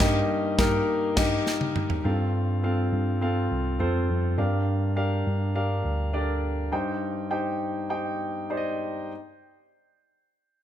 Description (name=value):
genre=piano-driven pop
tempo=103 BPM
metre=4/4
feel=straight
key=unclear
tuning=A4 = 440 Hz
part: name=warm concert grand piano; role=accompaniment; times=0.0-9.1 s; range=G2 to G5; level=-26 LUFS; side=left 1 dB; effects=none
part: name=tine electric piano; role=bass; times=0.0-6.7 s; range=C2 to G2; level=-26 LUFS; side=equal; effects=none
part: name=modern studio drum kit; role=drums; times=0.0-2.0 s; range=crash cymbal, kick drum, snare drum, toms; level=-26 LUFS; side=equal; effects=none
room=light reverb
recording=none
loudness=-24 LUFS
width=side -10 dB against mid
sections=0.0-2.0 A section; 2.0-10.6 B section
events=band accent 0.0-2.0; drum fill 1.5-2.0; slowing down 6.7-10.6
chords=0.0 Eb/G; 2.0 F/G; 4.4 Gm7; 6.7 Cm/G; 9.1 N.C.